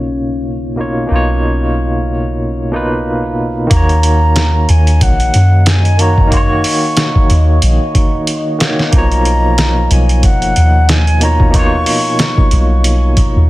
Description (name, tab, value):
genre	trip hop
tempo	92 BPM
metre	4/4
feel	swing 57% on 16ths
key	Eb minor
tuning	A4 = 439 Hz
part	barky tine electric piano	accompaniment	0.0-13.5 s	B2 to C#5	-17 LUFS	equal	overdrive, tremolo, tape echo
part	deep dark ambient pad	sustained chords	0.0-13.5 s	Db4 to Eb5	-26 LUFS	left 3 dB	chorus, built-in reverb
part	soft 808-style bass	bass	0.0-13.5 s	F#1 to Gb2	-12 LUFS	equal	none
part	mellow silver concert flute	melody	3.7-12.8 s	F#5 to Db6	-18 LUFS	equal	vintage 12-bit sampler grit, tape echo
part	trip hop sampler-style drum kit	drums	3.7-13.3 s	hi-hat, kick drum, snare drum	-14 LUFS	equal	studio reverb
room	digital ambience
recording	dense, heavily limited modern master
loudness	-10 LUFS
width	side -18 dB against mid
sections	0.0-3.7 A section; 3.7-13.5 B section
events	none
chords	0.0 Bmaj9#11; 3.7 Ebm7; 8.9 Bmaj9#11